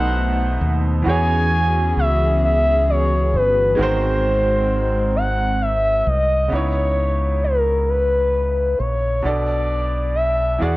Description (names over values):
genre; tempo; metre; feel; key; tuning
slow six-eight R&B; 44 BPM (dotted quarters); 6/8; straight; C# dorian; A4 = 440 Hz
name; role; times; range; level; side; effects
gliding portamento lead; melody; 0.0-10.8 s; A#4 to G#5; -19 LUFS; equal; chorus, slapback echo
bright baby grand piano; accompaniment; 0.0-10.8 s; B2 to D5; -26 LUFS; right 2 dB; none
hollow soft pad; sustained chords; 0.0-6.5 s; E3 to G#4; -26 LUFS; left 1 dB; chorus
deep dub fingered electric bass; bass; 0.0-10.8 s; G1 to E2; -20 LUFS; equal; tube saturation
room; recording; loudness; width
little or no reverb; worn, warbling old tape, cassette tape, warbly pitch drift, nothing above 10.4 kHz; -16 LUFS; side -19 dB against mid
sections
0.0-6.5 A section; 6.5-10.8 B section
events
none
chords
0.0 B7b9; 1.1 E6; 3.8 G#7; 6.5 C#m9; 9.2 Bm7